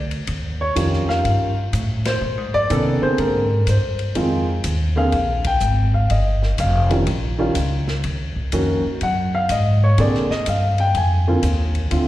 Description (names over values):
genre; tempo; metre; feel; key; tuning
jazz piano trio; 124 BPM; 4/4; swing 66% on 8ths; unclear; A4 = 440 Hz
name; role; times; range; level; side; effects
warm concert grand piano; melody; 0.0-12.1 s; D3 to Ab5; -20 LUFS; equal; plate reverb, slapback echo
upright bass; bass; 0.0-12.1 s; F1 to C3; -20 LUFS; equal; none
open jazz drum kit; drums; 0.1-12.1 s; hi-hat, kick drum, ride cymbal, snare drum; -30 LUFS; left 1 dB; none
room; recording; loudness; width
light reverb; live gig heard through the venue's PA, recital hall reverb; -17 LUFS; side -14 dB against mid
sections
0.0-12.1 A section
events
band accent 2.0, 5.4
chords
0.3 Eb9; 2.2 Bb9; 4.2 Fm7; 5.1 Gm7; 6.1 Eb9; 8.0 Ebm7; 10.0 Bb9